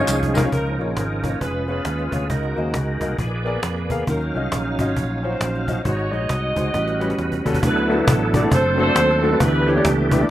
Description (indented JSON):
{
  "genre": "uptempo gospel",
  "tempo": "135 BPM",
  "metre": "4/4",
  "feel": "swing 61% on 8ths",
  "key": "Db major",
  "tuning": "A4 = 439 Hz",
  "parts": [
    { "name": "dark saxophone section", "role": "melody", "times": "0.0-10.3 s", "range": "Db4 to Eb5", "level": "-25 LUFS", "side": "equal", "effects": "plate reverb" },
    { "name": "warm baby grand piano", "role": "accompaniment", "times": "0.0-10.3 s", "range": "Ab2 to F5", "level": "-25 LUFS", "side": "left 2 dB", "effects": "plate reverb" },
    { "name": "bright tonewheel organ", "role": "sustained chords", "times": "0.0-10.3 s", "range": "E3 to F5", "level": "-24 LUFS", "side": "right 2 dB", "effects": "slow rotary speaker, chorus vibrato, plate reverb" },
    { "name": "fingered electric bass", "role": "bass", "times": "0.1-10.2 s", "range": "F1 to F2", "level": "-24 LUFS", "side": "equal", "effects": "none" },
    { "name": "cajon", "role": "drums", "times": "0.1-10.2 s", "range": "none", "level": "-23 LUFS", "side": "equal", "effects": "none" }
  ],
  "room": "moderate studio reverb, RT60 0.5 s",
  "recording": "rough home demo mix",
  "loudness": "-18 LUFS",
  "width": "side -13 dB against mid",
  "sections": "0.5-7.6 A section; 7.6-10.3 B section",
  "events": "drum fill 0.1-0.5, 6.7-7.6",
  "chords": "0.0 Dbmaj9; 0.5 Db69; 1.4 Db7/F; 2.3 Gb69/Db; 3.2 Bb7b9; 4.1 Ebm9; 5.9 Ab7sus4; 6.7 A13; 7.6 D69; 8.5 D7/F#; 9.4 G69/D",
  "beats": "0.08 | 0.52 0.97 1.41 1.85 | 2.30 2.74 3.19 3.63 | 4.08 4.52 4.96 5.41 | 5.85 6.30 6.74 7.18 | 7.63 8.07 8.52 8.96 | 9.40 9.85 10.29"
}